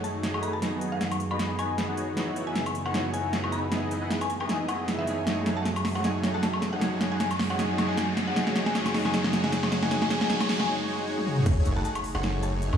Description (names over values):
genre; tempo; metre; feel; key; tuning
future bass; 155 BPM; 4/4; swing 55% on 16ths, half-time; F# dorian; A4 = 440 Hz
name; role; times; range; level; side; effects
mallet-like synth pluck; melody; 0.0-12.6 s; E5 to B5; -34 LUFS; left 2 dB; chorus, sidechain pumping, tape echo
airy breathy pad; sustained chords; 0.0-12.8 s; F#2 to D#5; -36 LUFS; right 1 dB; chorus, sidechain pumping
supersaw chords; riff; 0.0-12.8 s; G#3 to G#5; -32 LUFS; equal; sidechain pumping, low-pass filter
big-room dance drum kit; drums; 0.0-12.8 s; crash cymbal, hi-hat, snare drum, toms, woodblock; -29 LUFS; equal; overdrive
riser and sub drop; sound effects; 0.0-12.8 s; none; -35 LUFS; equal; none
semi-hollow electric guitar; accompaniment; 0.6-10.7 s; E3 to B4; -34 LUFS; right 3 dB; sidechain pumping, tape echo
airy dreamy lead; arpeggios; 11.5-12.8 s; C#5 to F#5; -40 LUFS; left 5 dB; chorus, sidechain pumping, tape echo
saturated sub bass; bass; 11.5-12.8 s; F#1 to F#2; -27 LUFS; equal; sidechain pumping
electronic kick drum; drums; 11.5 s; none; -27 LUFS; equal; overdrive
room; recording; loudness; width
moderate huge ambient reverb, RT60 7.4 s; played on a big sound system in a bare room, stone room reverb, studio reverb; -25 LUFS; side -8 dB against mid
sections
0.0-11.5 A section; 11.5-12.8 B section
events
build-up 0.0-11.5; drum fill 0.0-10.7, 11.2; riser 0.0-10.7; filter sweep on supersaw synth 0.0-11.5; filter sweep on analog synth pad 0.0-11.5; break 10.7-11.5; drop 11.5-12.8; impact 11.5-12.8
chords
0.0 F#m69; 0.6 G#m7/F#; 2.2 C#m11/F#; 5.3 F#m69; 6.8 G#m7/F#; 8.4 C#m11/F#; 9.9 B69/F#; 11.5 F#m69